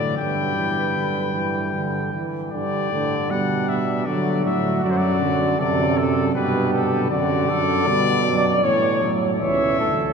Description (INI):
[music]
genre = classical, imitative canzona for brass ensemble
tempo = 78 BPM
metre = 3/4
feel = straight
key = G major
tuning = A4 = 440 Hz
[part]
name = clear trumpet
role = melody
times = 0.0-10.1 s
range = A4 to G5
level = -24 LUFS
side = left 5 dB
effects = none
[part]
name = mellow bass trombone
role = bass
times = 0.0-10.1 s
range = C#2 to D3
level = -25 LUFS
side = right 1 dB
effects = none
[part]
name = warm flugelhorn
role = second line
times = 0.2-10.1 s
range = D4 to D5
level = -25 LUFS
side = right 4 dB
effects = none
[part]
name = warm trombone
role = accompaniment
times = 0.2-9.9 s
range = B2 to G3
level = -24 LUFS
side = right 2 dB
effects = none
[sound]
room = wet cathedral reverb, RT60 6.8 s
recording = heard from further back in the room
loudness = -18 LUFS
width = side -6 dB against mid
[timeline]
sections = 0.0-2.5 A section; 2.5-10.1 B section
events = none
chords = 0.2 G; 4.1 D; 4.8 D/F#; 6.3 G; 7.1 D/F#; 8.6 A; 9.4 A/C#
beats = | 0.17 0.96 1.75 | 2.53 3.30 4.07 | 4.83 5.59 6.35 | 7.11 7.87 8.64 | 9.41